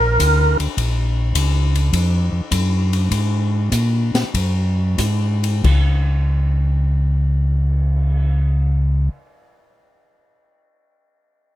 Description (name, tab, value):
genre	soul jazz organ trio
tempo	89-105 BPM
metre	4/4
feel	swing 69% on 8ths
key	unclear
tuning	A4 = 441 Hz
part	percussive tonewheel organ	melody	0.0-0.6 s	Bb4	-17 LUFS	right 2 dB	slow rotary speaker, overdrive, chorus vibrato
part	mellow tonewheel organ	bass	0.0-9.1 s	Bb1 to Bb2	-16 LUFS	equal	chorus vibrato, slow rotary speaker
part	open jazz drum kit	drums	0.2-8.2 s	crash cymbal, cymbal swell, hi-hat, kick drum, ride cymbal, snare drum	-23 LUFS	left 3 dB	none
room	little or no reverb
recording	close, detailed microphones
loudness	-16 LUFS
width	side -14 dB against mid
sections	0.8-5.6 A section; 5.6-8.3 B section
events	slowing down 0.8-5.6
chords	0.0 Bb; 0.8 Bbm; 3.1 Absus2; 5.6 N.C.